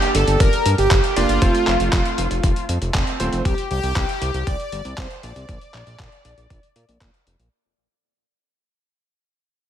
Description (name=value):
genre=italo disco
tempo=118 BPM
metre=4/4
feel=straight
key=unclear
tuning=A4 = 439 Hz
part: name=analog synth brass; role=melody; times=0.0-7.0 s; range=C4 to D5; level=-22 LUFS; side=equal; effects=chorus, ping-pong delay
part: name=warm electric grand piano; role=stabs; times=0.0-3.4 s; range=A3 to D5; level=-26 LUFS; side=right 4 dB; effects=none
part: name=dusty soul sampler-style drum kit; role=drums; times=0.0-7.5 s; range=handclaps, hi-hat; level=-26 LUFS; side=equal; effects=overdrive, gated reverb
part: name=fat analog bass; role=bass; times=0.1-7.5 s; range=Eb1 to Bb2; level=-23 LUFS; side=equal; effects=tube saturation
part: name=electronic kick drum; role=drums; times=0.4-7.1 s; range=none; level=-20 LUFS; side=equal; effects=overdrive
room=light reverb, digital ambience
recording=none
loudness=-17 LUFS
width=side -10 dB against mid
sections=0.0-7.5 A section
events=fade-out 0.0-7.5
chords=0.0 Gm; 1.4 F; 3.5 Csus2; 5.5 Bb